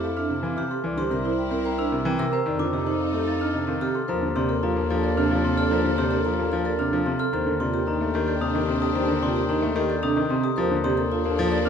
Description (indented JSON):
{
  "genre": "classical, minimalist pattern music",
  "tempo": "111 BPM",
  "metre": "3/4",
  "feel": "straight",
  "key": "Eb lydian from 4.1 s",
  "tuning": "A4 = 441 Hz",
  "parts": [
    { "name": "marimba with soft mallets", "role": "melody", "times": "0.0-11.7 s", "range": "G4 to G5", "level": "-31 LUFS", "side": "left 6 dB", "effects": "none" },
    { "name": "mellow hollow alto flute", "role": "second line", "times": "0.0-11.7 s", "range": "D4 to E4", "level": "-33 LUFS", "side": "right 5 dB", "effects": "none" },
    { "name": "clear grand piano", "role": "accompaniment", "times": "0.0-11.7 s", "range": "C3 to C4", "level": "-27 LUFS", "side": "left 2 dB", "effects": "none" },
    { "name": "warm symphonic string section", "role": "sustained chords", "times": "0.0-11.7 s", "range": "D4 to Bb4", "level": "-34 LUFS", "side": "left 5 dB", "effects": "none" },
    { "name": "vibraphone with medium hard mallets", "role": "arpeggios", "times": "0.0-11.7 s", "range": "C4 to C5", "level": "-28 LUFS", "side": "right 9 dB", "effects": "none" },
    { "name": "mellow bass clarinet", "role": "bass", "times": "0.0-11.7 s", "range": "C2 to F2", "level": "-29 LUFS", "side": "left 2 dB", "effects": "none" },
    { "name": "glockenspiel with rubber mallets", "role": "arpeggios", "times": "0.2-11.7 s", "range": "Bb5 to A6", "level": "-30 LUFS", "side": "left 3 dB", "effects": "none" }
  ],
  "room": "light reverb",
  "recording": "close, detailed microphones",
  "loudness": "-22 LUFS",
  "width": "side -7 dB against mid",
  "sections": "0.0-4.1 A section; 4.1-11.7 B section",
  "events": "none",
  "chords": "0.0 Fmaj9; 0.8 C7; 2.5 F13; 4.1 Ebmaj9#11",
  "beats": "0.30 | 0.84 1.38 1.92 | 2.46 3.00 3.54 | 4.09 4.63 5.17 | 5.71 6.25 6.79 | 7.33 7.87 8.41 | 8.95 9.49 10.03 | 10.57 11.11 11.65"
}